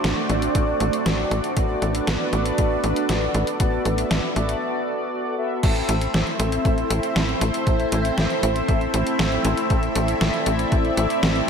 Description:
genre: synthwave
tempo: 118 BPM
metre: 4/4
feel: straight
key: A dorian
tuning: A4 = 442 Hz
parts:
  - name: lush unison pad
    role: sustained chords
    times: 0.0-11.5 s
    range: A3 to E5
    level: -26 LUFS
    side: right 1 dB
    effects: chorus, phaser, sidechain pumping
  - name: mellow synth brass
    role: stabs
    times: 0.0-11.5 s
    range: B3 to E5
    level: -25 LUFS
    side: left 1 dB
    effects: chorus, tape echo, slapback echo
  - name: tight sequencer bass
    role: bass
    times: 0.0-11.4 s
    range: A1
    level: -24 LUFS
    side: equal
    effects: tube saturation, sidechain pumping
  - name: detuned 8-bit digital drum machine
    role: drums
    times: 0.0-11.5 s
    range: crash cymbal, hi-hat, snare drum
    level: -26 LUFS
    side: equal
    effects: overdrive
  - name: electronic kick drum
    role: drums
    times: 0.5-10.8 s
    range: none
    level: -22 LUFS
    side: equal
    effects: overdrive
room: wet lush hall reverb, RT60 2.0 s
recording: big arena sound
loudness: -19 LUFS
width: side -6 dB against mid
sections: 0.0-5.6 A section; 5.6-11.5 B section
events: break 4.6-5.6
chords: 0.0 D7/A; 1.6 Bm7/A; 5.6 Am

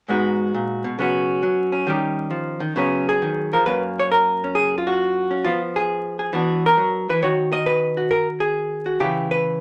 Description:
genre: solo jazz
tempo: 134 BPM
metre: 4/4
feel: swing 68% on 8ths, rubato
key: F# major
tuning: A4 = 440 Hz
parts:
  - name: archtop guitar, miked and amplified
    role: solo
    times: 0.1-9.6 s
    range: F#2 to D#5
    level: -21 LUFS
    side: equal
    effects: none
room: moderate studio reverb, RT60 0.5 s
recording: vinyl crackle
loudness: -21 LUFS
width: mono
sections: 0.1-3.7 A section; 3.7-9.6 B section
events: none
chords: 0.1 G#m7; 1.0 C#7sus4; 1.9 D#7; 2.8 C#7sus4; 3.7 F#maj7; 5.4 Fdim; 6.3 Esus2; 7.2 D#m; 9.0 C#m7b5

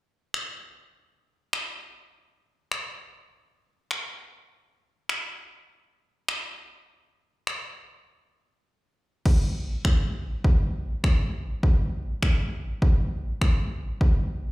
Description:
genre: pop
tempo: 101 BPM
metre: 4/4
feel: straight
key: none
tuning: none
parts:
  - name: punchy analog drum machine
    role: drums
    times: 0.3-14.1 s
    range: crash cymbal, finger snaps, kick drum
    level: -23 LUFS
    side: equal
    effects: none
room: little or no reverb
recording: live gig heard through the venue's PA, recital hall reverb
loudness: -24 LUFS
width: side -20 dB against mid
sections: 0.0-9.3 A section; 9.3-14.5 B section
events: break 8.1-9.3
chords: none

